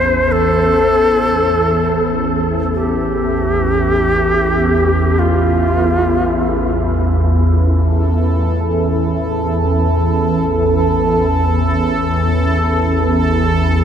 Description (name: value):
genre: dark ambient drone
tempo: free time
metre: none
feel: none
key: unclear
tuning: A4 = 440 Hz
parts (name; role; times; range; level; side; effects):
- bright reedy shakuhachi; melody; 0.0-7.0 s; F4 to C5; -16 LUFS; equal; diffuse ambient delay
- organ-like drone; drone; 0.0-13.8 s; A1 to E2; -15 LUFS; equal; ensemble chorus, built-in reverb
- bubbling stepped-filter texture; texture; 7.7-13.8 s; A4; -19 LUFS; right 2 dB; chorus, built-in reverb
room: wet huge ambient reverb, RT60 8.1 s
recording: none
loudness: -13 LUFS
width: side -8 dB against mid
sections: 0.0-13.8 A section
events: none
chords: 0.0 A5